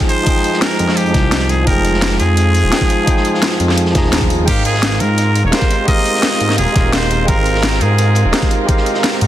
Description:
liquid drum and bass; 171 BPM; 4/4; straight; Ab major; A4 = 440 Hz
tine electric piano; accompaniment; 0.0-9.3 s; F3 to Bb5; -19 LUFS; right 1 dB
dark chamber string section; sustained chords; 0.0-9.3 s; Ab3 to Bb4; -23 LUFS; right 2 dB; sidechain pumping
crunchy breakbeat drum kit; drums; 0.0-9.3 s; hi-hat, snare drum; -27 LUFS; equal
electronic kick drum; drums; 0.0-8.8 s; -15 LUFS; equal; overdrive
trumpet with straight mute; melody; 0.1-8.5 s; G4 to Eb5; -20 LUFS; equal; dub echo
drum and bass drum kit; drums; 0.1-9.3 s; crash cymbal, hi-hat, snare drum; -19 LUFS; left 1 dB; overdrive
smooth gliding synth bass; bass; 0.8-9.3 s; Eb1 to Ab2; -16 LUFS; equal
small room reverb; dense, heavily limited modern master; -12 LUFS; side -12 dB against mid
0.0-4.5 A section; 4.5-9.3 A section
drop 0.0-4.5, 4.5-9.3; band accent 4.1
0.0 Abmaj7(no3); 4.5 Abmaj13

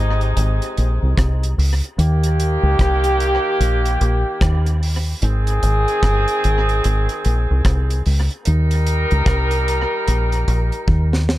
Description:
roots reggae; 74 BPM; 4/4; swing 61% on 16ths; Ab major; A4 = 440 Hz
clear horn section; second line; 0.0-11.2 s; C3 to Bb4; -21 LUFS; equal; dub echo
deep dub fingered electric bass; bass; 0.0-11.4 s; G1 to Eb2; -17 LUFS; equal
deep reggae drum kit; drums; 0.2-11.4 s; hi-hat, kick drum, rim click, snare drum; -23 LUFS; equal; tape echo
little or no reverb; -15 LUFS; side -16 dB against mid
0.0-11.4 A section
drum fill 10.9-11.4
0.0 Ab; 2.0 Eb; 5.2 Ab; 8.5 Eb

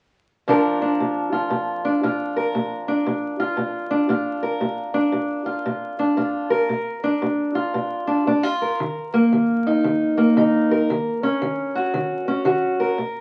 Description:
blues; 115 BPM; 4/4; swing 63% on 8ths; Bb major; A4 = 439 Hz
fingerpicked steel-string acoustic guitar; solo; 0.5-13.2 s; Bb2 to Bb4; -22 LUFS; equal
wet small room reverb, RT60 0.6 s; very old 78 rpm record, vinyl crackle; -22 LUFS; mono
0.5-13.2 A section
0.5 Bb; 8.8 Eb5; 10.9 Ebm7

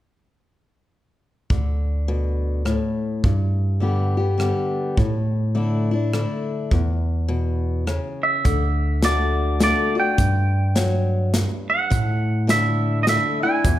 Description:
honky-tonk and classic country; 104 BPM; 3/4; swing 62% on 8ths; D major; A4 = 437 Hz
picked steel-string acoustic guitar; accompaniment; 1.5-13.8 s; E2 to G4; -25 LUFS; left 3 dB
mellow tine electric piano; bass; 1.5-13.8 s; D2 to A2; -22 LUFS; equal
natural country drum kit; drums; 1.5-13.8 s; hi-hat, kick drum, rim click, snare drum; -23 LUFS; equal
twangy electric guitar; melody; 8.2-13.8 s; D5 to G#5; -22 LUFS; right 2 dB
light reverb; -19 LUFS; side -13 dB against mid
1.5-8.5 A section; 8.5-13.8 B section
1.5 D5; 3.2 G; 5.0 Asus4; 6.7 E5; 8.5 D; 10.2 N.C.; 11.9 Asus4

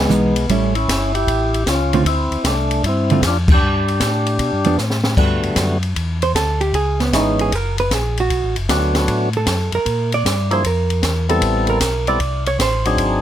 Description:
soul jazz organ trio; 154 BPM; 4/4; swing 66% on 8ths; A4 = 438 Hz
percussive tonewheel organ; melody; 0.0-13.2 s; D3 to A4; -19 LUFS; left 1 dB; slow rotary speaker
mellow tonewheel organ; bass; 0.0-13.2 s; F#1 to B2; -20 LUFS; equal; overdrive, chorus vibrato, slow rotary speaker
hollow-body jazz guitar; accompaniment; 0.1-13.2 s; D3 to D5; -20 LUFS; right 4 dB
open jazz drum kit; drums; 0.1-13.1 s; crash cymbal, hi-hat, kick drum, ride cymbal, snare drum; -21 LUFS; left 1 dB
little or no reverb; close, detailed microphones; -15 LUFS; side -11 dB against mid
0.0-5.2 A section; 5.2-13.2 B section
band accent 3.4; drum fill 4.8-5.2; hollow-body jazz guitar solo 5.2-13.2
0.5 A7; 2.0 Dm7; 3.6 G7; 5.2 Gmaj7; 6.7 C#m7; 7.5 F#; 8.3 Bm7; 9.9 Bb(#11); 11.4 Am7

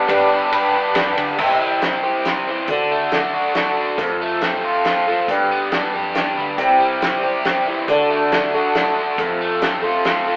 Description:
folk rock and heartland rock; 138 BPM; 3/4; straight; G mixolydian; A4 = 441 Hz
picked twelve-string acoustic guitar; accompaniment; 0.0-10.4 s; C3 to C5; -23 LUFS; equal
accordion; sustained chords; 0.0-1.4, 6.6-10.4 s; G3 to A4; -27 LUFS; equal; light tremolo tuning
biting overdriven guitar; riff; 0.0-10.4 s; F2 to B4; -23 LUFS; equal
hollow-body short-scale picked electric bass; bass; 0.1-9.8 s; C2 to G2; -42 LUFS; equal
natural country drum kit; drums; 0.1-10.2 s; crash cymbal, hi-hat, kick drum, ride cymbal, snare drum; -25 LUFS; equal
wet stone room reverb, RT60 1.4 s; band playing live in one room, telephone sound; -19 LUFS; mono
0.0-1.4 A section; 1.4-10.4 B section
0.0 G; 1.4 C; 2.7 D; 4.0 F; 5.3 G; 6.6 C; 7.9 D; 9.2 F

